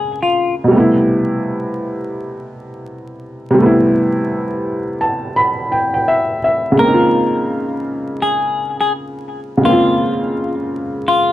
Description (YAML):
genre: hip hop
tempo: 84 BPM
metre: 4/4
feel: swing 62% on 16ths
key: unclear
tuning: A4 = 440 Hz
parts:
  - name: semi-hollow electric guitar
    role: melody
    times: 0.0-0.5, 6.8-11.3 s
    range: F4 to Bb4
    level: -17 LUFS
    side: left 2 dB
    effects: wide subtle chorus, low-pass filter, analog delay
  - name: felt-muted upright piano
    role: accompaniment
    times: 0.0-11.3 s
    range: B2 to B5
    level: -15 LUFS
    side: equal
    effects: cassette tape, low-pass filter
room: moderate studio reverb, RT60 0.6 s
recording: vinyl crackle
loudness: -14 LUFS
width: side -14 dB against mid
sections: 0.0-6.8 A section; 6.8-11.3 A section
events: felt piano fill 4.6-6.8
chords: 0.0 Bbm9; 0.7 Am9; 6.8 Bbm9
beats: 0.35 | 1.06 1.78 2.49 3.21 | 3.92 4.64 5.35 6.06 | 6.78 7.49 8.21 8.92 | 9.64 10.35 11.06